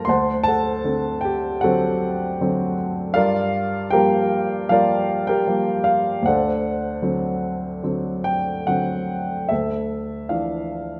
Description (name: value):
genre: classical, lyrical solo piano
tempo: 70-80 BPM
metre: 4/4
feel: rubato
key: unclear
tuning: A4 = 440 Hz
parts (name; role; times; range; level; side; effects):
- warm upright piano; solo; 0.0-11.0 s; D2 to C6; -22 LUFS; equal; none
room: moderate scoring stage reverb, RT60 1.7 s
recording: none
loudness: -22 LUFS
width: mono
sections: 0.0-9.5 A section; 9.5-11.0 B section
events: none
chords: 0.1 D7; 3.2 Gm7; 6.2 D7; 9.5 Dmadd9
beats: | 0.08 0.86 1.64 2.40 | 3.16 3.92 4.70 5.47 | 6.25 7.03 7.84 8.68 | 9.51 10.31